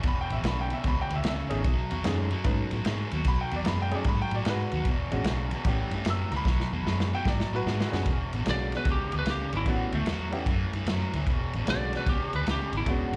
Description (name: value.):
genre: electric blues shuffle.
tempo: 150 BPM.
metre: 4/4.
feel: swing 66% on 8ths.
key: E mixolydian.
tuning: A4 = 440 Hz.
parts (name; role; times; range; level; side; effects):
crunchy overdriven guitar; riff; 0.0-13.1 s; E2 to G#3; -36 LUFS; equal; slapback echo.
vintage muted fingered electric bass; bass; 0.0-13.2 s; E1 to A2; -33 LUFS; equal; none.
crunchy breakbeat drum kit; drums; 0.0-13.2 s; kick drum, ride cymbal, snare drum; -33 LUFS; equal; none.
clear upright piano; accompaniment; 0.1-13.2 s; E2 to E6; -37 LUFS; equal; slapback echo.
lightly driven lead guitar; melody; 8.5-13.1 s; A3 to D5; -34 LUFS; equal; slapback echo.
room: studio reverb.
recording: live gig heard through the venue's PA, club reverb.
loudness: -28 LUFS.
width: mono.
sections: 0.0-8.1 A section; 8.1-13.2 A section.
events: drum fill 6.5-8.1; lead electric guitar solo 8.1-13.2.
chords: 0.0 E6; 1.7 B13; 4.9 E13; 5.7 A13; 6.5 B5; 8.1 E13; 9.7 A13; 11.3 E13.